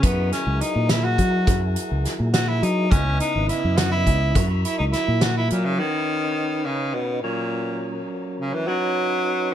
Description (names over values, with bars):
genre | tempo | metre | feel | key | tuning
progressive instrumental, band music in an uneven meter | 208 BPM (eighths) | 5/8 | straight | F# mixolydian | A4 = 437 Hz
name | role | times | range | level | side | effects
clear tenor saxophone | melody | 0.0-9.5 s | A#2 to F#4 | -24 LUFS | equal | plate reverb, ping-pong delay
percussive tonewheel organ | accompaniment | 0.0-9.5 s | C#3 to D#5 | -30 LUFS | right 1 dB | overdrive, chorus vibrato, fast rotary speaker, plate reverb
fingered electric bass | bass | 0.0-5.8 s | G#1 to F#3 | -22 LUFS | equal | none
loose indie drum kit | drums | 0.0-5.6 s | hi-hat, kick drum, snare drum | -23 LUFS | equal | none
room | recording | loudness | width
light reverb | none | -20 LUFS | side -10 dB against mid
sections
0.0-5.8 A section; 5.8-9.5 B section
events
tenor saxophone solo 0.0-5.8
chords
0.0 F#9; 2.9 C#m9; 4.4 F#7; 5.8 Badd9; 7.2 F#; 8.7 Badd9